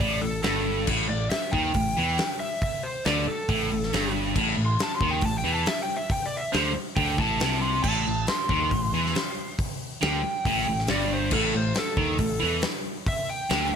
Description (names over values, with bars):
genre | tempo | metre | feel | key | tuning
blues rock power trio and southern rock | 138 BPM | 4/4 | straight | A minor | A4 = 441 Hz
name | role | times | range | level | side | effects
overdriven slide guitar | melody | 0.0-13.7 s | A4 to C6 | -29 LUFS | equal | slapback echo
distorted electric guitar | riff | 0.0-13.8 s | G2 to E3 | -26 LUFS | equal | distortion
picked electric bass | bass | 0.0-13.7 s | G1 to E2 | -30 LUFS | equal | none
big rock drum kit | drums | 0.0-13.6 s | crash cymbal, hi-hat, kick drum, snare drum | -29 LUFS | left 1 dB | none
room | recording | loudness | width
small room ambience | none | -23 LUFS | side -7 dB against mid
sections
0.0-13.8 A section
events
electric slide guitar solo 0.0-13.8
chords
0.0 A5